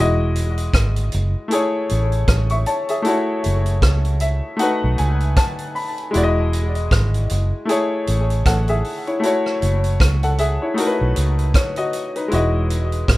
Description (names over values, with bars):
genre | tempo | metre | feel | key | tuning
lovers rock reggae | 78 BPM | 4/4 | swing 58% on 16ths | E major | A4 = 440 Hz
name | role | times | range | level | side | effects
clear grand piano | accompaniment | 0.0-13.2 s | G#3 to C#6 | -21 LUFS | left 2 dB | tape echo
vintage muted fingered electric bass | bass | 0.0-13.2 s | E1 to C#2 | -18 LUFS | equal | none
vintage drum kit | drums | 0.4-13.2 s | hi-hat, kick drum, rim click | -21 LUFS | equal | none
room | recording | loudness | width
light reverb | rough home demo mix | -17 LUFS | side -18 dB against mid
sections
0.0-13.2 A section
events
grand piano fill 3.8-6.1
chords
0.0 Emaj9; 1.5 Amaj7; 3.1 F#m7; 4.6 B7; 6.1 Emaj9; 7.7 Amaj7; 9.2 F#m7; 10.8 B7; 12.3 Emaj9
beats
0.74 1.51 2.28 | 3.05 3.83 4.60 5.37 | 6.14 6.91 7.68 8.46 | 9.23 10.00 10.77 11.54 | 12.31 13.08